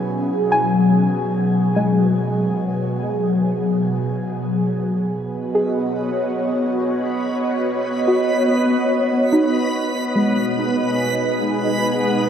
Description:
ambient; 72 BPM; 3/4; straight; B major; A4 = 440 Hz
airy breathy pad; sustained chords; 0.0-12.3 s; B2 to D#5; -19 LUFS; equal; chorus, phaser, shimmer reverb
soft round pluck; arpeggios; 0.0-12.3 s; G#3 to G#5; -24 LUFS; equal; chorus, diffuse ambient delay, shimmer reverb
backwards swelling texture; texture; 6.0-12.3 s; B3 to B5; -23 LUFS; equal; built-in reverb, shimmer reverb
wet cathedral reverb, RT60 6.0 s; dark, warm production; -17 LUFS; side -8 dB against mid
0.0-5.1 A section; 5.1-12.3 B section
0.0 F#5/B; 5.1 B

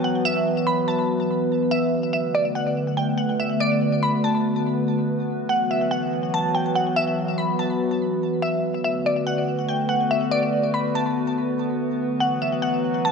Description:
hip hop; 143 BPM; 4/4; half-time; B minor; A4 = 441 Hz
glassy wavetable pluck; melody; 0.0-13.1 s; D5 to B5; -24 LUFS; equal; chorus, low-pass filter, ping-pong delay
warbly tape-like pad; sustained chords; 0.0-13.1 s; D3 to B4; -22 LUFS; equal; chorus, built-in reverb
wet plate reverb, RT60 3.0 s; dreamy mix soaked in reverb; -20 LUFS; side -5 dB against mid
0.0-8.6 A section; 8.6-13.1 B section
0.0 Esus2; 1.9 Bm7; 5.3 Esus2; 8.6 Bm7; 12.0 Esus2

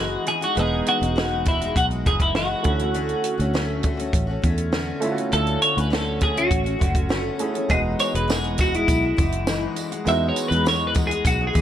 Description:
indie pop, bedroom pop; 101 BPM; 4/4; straight; E major; A4 = 440 Hz
twelve-string electric guitar; melody; 0.0-11.6 s; E4 to E5; -23 LUFS; equal; lush chorus
picked steel-string acoustic guitar; accompaniment; 0.0-11.6 s; D3 to F#4; -28 LUFS; left 3 dB; lush chorus, warbly pitch drift
warm upright piano; accompaniment; 0.0-11.6 s; G#3 to D#5; -30 LUFS; right 4 dB
fingered electric bass; bass; 0.0-11.6 s; E1 to E2; -26 LUFS; equal
compact cocktail drum kit; drums; 0.3-11.6 s; hi-hat, kick drum, snare drum; -24 LUFS; right 1 dB
tambourine; percussion; 7.7-11.6 s; -38 LUFS; right 5 dB
light reverb, small room ambience; -19 LUFS; side -10 dB against mid
0.0-11.6 A section
clean electric guitar solo 0.0-11.6
0.0 Emaj9; 2.7 Dmaj7; 7.7 Emaj9

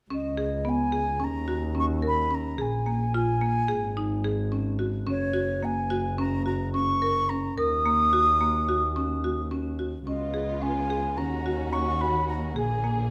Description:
contemporary instrumental, chamber music in an uneven meter; 217 BPM (eighths); 9/8; straight; Eb minor; A4 = 439 Hz
mellow silver concert flute; melody; 0.1-13.1 s; Db5 to Eb6; -29 LUFS; equal
marimba with hard mallets; arpeggios; 0.1-13.0 s; Bb3 to Bb4; -32 LUFS; equal
muted double bass; bass; 0.1-13.1 s; Gb1 to Eb2; -32 LUFS; equal
dark symphonic string section; sustained chords; 10.1-13.1 s; Db3 to Ab4; -36 LUFS; equal
moderate recital hall reverb, RT60 1.5 s; -26 LUFS; mono
0.1-10.1 A section; 10.1-13.1 A section
0.1 Db5; 1.2 Ebm7; 2.6 Bb5; 3.7 Ab5; 5.1 Gb; 7.6 Ebm7; 10.1 Db7; 11.2 Ebm7; 12.6 Bb7

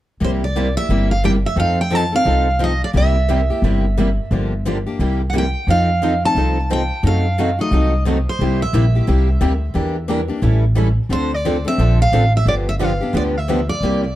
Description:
acoustic string swing (jazz manouche); 177 BPM; 4/4; swing 61% on 8ths; C mixolydian; A4 = 439 Hz
picked steel-string acoustic guitar; melody; 0.2-9.0, 11.1-14.0 s; C5 to A5; -21 LUFS; right 2 dB; tape echo
picked steel-string acoustic guitar; accompaniment; 0.2-14.0 s; C3 to A4; -22 LUFS; left 4 dB
picked steel-string acoustic guitar; accompaniment; 0.2-14.0 s; C3 to Bb4; -26 LUFS; right 7 dB
upright bass; bass; 0.2-14.2 s; G1 to F#2; -18 LUFS; equal
light reverb; dark, warm production; -15 LUFS; side -14 dB against mid
0.2-14.2 A section
0.2 C7; 1.6 F7; 2.9 C7; 4.3 Gm7; 5.0 C7; 5.7 F7; 7.0 F#dim7; 8.4 C7; 9.7 Em7b5; 10.4 A7; 11.1 Dm7; 12.5 G7

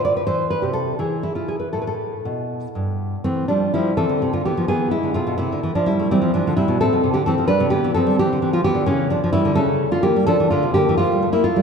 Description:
classical, baroque-style dance for nylon-string guitar; 79-88 BPM (dotted quarters); 6/8; rubato; A minor; A4 = 437 Hz
nylon-string guitar; solo; 0.0-11.6 s; G2 to D5; -17 LUFS; equal
wet church reverb, RT60 2.8 s; recorded in a church or concert hall; -17 LUFS; side -6 dB against mid
0.0-3.2 A section; 3.2-11.6 B section
0.3 C6; 1.0 N.C.; 1.7 A5; 3.2 Am/E; 4.7 E7; 5.4 Am/C; 6.1 C; 7.5 G7; 8.2 C; 8.9 A7b9b13/C#; 10.3 Dm

